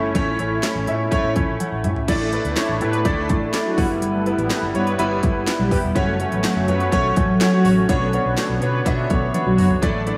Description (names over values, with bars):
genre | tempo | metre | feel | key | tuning
1980s-style pop | 124 BPM | 4/4 | straight | B minor | A4 = 440 Hz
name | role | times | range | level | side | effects
clear baby grand piano | accompaniment | 0.0-10.2 s | G3 to F#5 | -24 LUFS | equal | analog chorus
lush unison pad | sustained chords | 0.0-10.2 s | D3 to E4 | -27 LUFS | equal | chorus, phaser
vintage muted fingered electric bass | bass | 0.0-10.1 s | E1 to B2 | -28 LUFS | equal | none
house drum kit | drums | 0.1-10.2 s | crash cymbal, hi-hat, kick drum, snare drum, toms | -26 LUFS | equal | none
mellow synth brass | stabs | 2.2-10.0 s | F#3 to B4 | -28 LUFS | equal | chorus
room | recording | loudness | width
wet lush hall reverb, RT60 2.3 s | dreamy mix soaked in reverb | -20 LUFS | mono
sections
0.0-2.1 A section; 2.1-10.2 B section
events
drum fill 1.6-2.1, 9.3-9.8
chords
0.0 A; 2.1 Asus4; 3.8 Em/G; 6.0 F#m; 7.9 Bmadd9